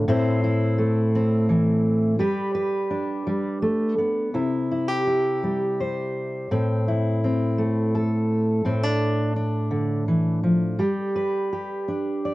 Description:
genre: folk, solo fingerstyle acoustic guitar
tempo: 56 BPM (dotted quarters)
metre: 6/8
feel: rubato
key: C major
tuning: A4 = 440 Hz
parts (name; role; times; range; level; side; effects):
- fingerpicked steel-string acoustic guitar; solo; 0.0-12.3 s; A2 to D5; -21 LUFS; equal; none
room: light reverb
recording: worn, warbling old tape, cassette tape, warbly pitch drift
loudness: -21 LUFS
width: side -18 dB against mid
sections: 0.0-4.4 A section; 4.4-12.3 B section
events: none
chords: 0.1 Am; 2.2 G; 4.4 C; 6.5 Am; 8.7 Dm/A; 10.8 G

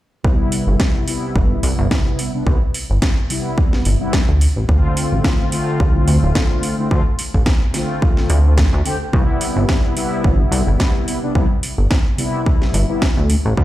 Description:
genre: nu-disco, nu disco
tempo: 108 BPM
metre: 4/4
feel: swing 56% on 16ths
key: unclear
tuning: A4 = 439 Hz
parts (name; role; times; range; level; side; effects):
- mellow synth brass; accompaniment; 0.2-13.6 s; C3 to G4; -21 LUFS; equal; chorus, sidechain pumping, tape echo
- chorused synth bass; bass; 0.2-13.6 s; D1 to D2; -15 LUFS; equal; none
- electronic kick drum; drums; 0.2-13.6 s; none; -16 LUFS; equal; none
- house drum kit; drums; 0.5-13.4 s; hi-hat, snare drum; -24 LUFS; equal; none
room: digital ambience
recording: played on a big sound system in a bare room, large studio reverb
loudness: -14 LUFS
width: side -15 dB against mid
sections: 0.2-13.6 A section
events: none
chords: 0.2 Cmaj7; 4.4 Dm7; 9.1 Cmaj7

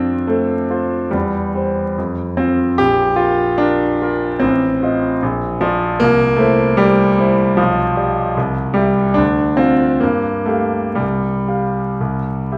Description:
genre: classical, romantic character piece for solo piano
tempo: 58-78 BPM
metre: 2/4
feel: rubato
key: unclear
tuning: A4 = 443 Hz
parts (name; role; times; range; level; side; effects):
- clear concert grand piano; solo; 0.0-12.6 s; A1 to F5; -16 LUFS; equal; none
room: moderate recital hall reverb, RT60 1.3 s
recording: vinyl crackle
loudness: -16 LUFS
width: mono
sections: 0.0-12.6 A section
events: none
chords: 0.0 F; 1.1 C/E; 2.0 F5; 2.8 Bb; 4.4 F7/A; 5.2 Bb; 6.0 C; 7.6 G7/B; 8.4 C; 9.2 Dm7; 10.0 Gm7; 11.0 Csus4; 12.0 C5

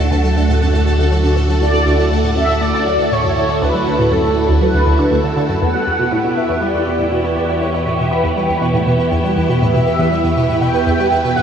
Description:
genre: ambient, sequencer-driven space music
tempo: 120 BPM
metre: 4/4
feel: straight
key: E dorian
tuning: A4 = 440 Hz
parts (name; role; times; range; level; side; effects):
- phased string machine; sustained chords; 0.0-11.4 s; A3 to G4; -19 LUFS; right 2 dB; ensemble chorus, phaser
- resonant blip pluck; riff; 0.0-11.4 s; D2 to B3; -18 LUFS; equal; phaser, analog delay
- analog drone; bass; 0.0-11.4 s; D2 to E2; -19 LUFS; equal; chorus
- pulsing gated texture; texture; 0.0-11.4 s; A4 to C#6; -27 LUFS; right 1 dB; chorus, built-in reverb
- mellow horn-like synth lead; melody; 1.6-11.4 s; A4 to G5; -19 LUFS; equal; ensemble chorus, analog delay
room: wet huge ambient reverb, RT60 7.8 s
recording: small room ambience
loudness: -13 LUFS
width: side -8 dB against mid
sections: 0.0-11.4 A section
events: none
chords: 0.0 D; 5.6 Em

